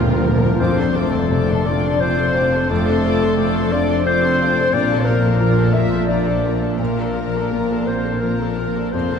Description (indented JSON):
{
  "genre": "cinematic, emotional film score for orchestra",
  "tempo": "86 BPM",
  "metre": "3/4",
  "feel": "uneven beats, rubato",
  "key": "F major",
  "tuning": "A4 = 439 Hz",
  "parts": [
    { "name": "dark studio violin section", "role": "second line", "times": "0.0-9.2 s", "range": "A4 to E5", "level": "-29 LUFS", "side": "left 3 dB", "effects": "none" },
    { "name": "warm clarinet", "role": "second line", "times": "0.0-9.2 s", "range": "A4 to E5", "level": "-22 LUFS", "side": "left 2 dB", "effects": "none" },
    { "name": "felt-muted upright piano", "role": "accompaniment", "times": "0.0-9.2 s", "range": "D2 to Bb3", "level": "-26 LUFS", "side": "left 1 dB", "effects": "none" },
    { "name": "rich studio viola section", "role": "accompaniment", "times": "0.0-9.2 s", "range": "Bb3 to Bb4", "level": "-27 LUFS", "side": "right 2 dB", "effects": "none" },
    { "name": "warm French horn section", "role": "sustained chords", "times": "0.0-9.2 s", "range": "A3 to F4", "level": "-24 LUFS", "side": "left 2 dB", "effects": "none" },
    { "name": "concert harp", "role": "arpeggios", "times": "0.0-9.2 s", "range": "F2 to A5", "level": "-25 LUFS", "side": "left 7 dB", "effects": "none" },
    { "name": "warm studio double bass section", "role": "bass", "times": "0.0-9.2 s", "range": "F1 to D2", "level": "-24 LUFS", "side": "right 2 dB", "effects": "none" },
    { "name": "timpani", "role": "percussion", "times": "0.0-0.5 s", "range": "Bb2", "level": "-24 LUFS", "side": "right 1 dB", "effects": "none" },
    { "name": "rich studio violin section", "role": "melody", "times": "0.6-9.2 s", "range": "A5 to D6", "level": "-34 LUFS", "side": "left 4 dB", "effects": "none" },
    { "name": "warm studio cello section", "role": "bass", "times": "0.6-9.2 s", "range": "F2 to Bb2", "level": "-26 LUFS", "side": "right 2 dB", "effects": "none" }
  ],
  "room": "wet cathedral reverb, RT60 6.6 s",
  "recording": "none",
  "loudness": "-15 LUFS",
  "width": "side -6 dB against mid",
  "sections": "0.6-9.2 A section",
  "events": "timpani fill 0.0-0.6",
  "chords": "0.0 Bb7/D; 0.6 F6; 4.7 Bbmaj7"
}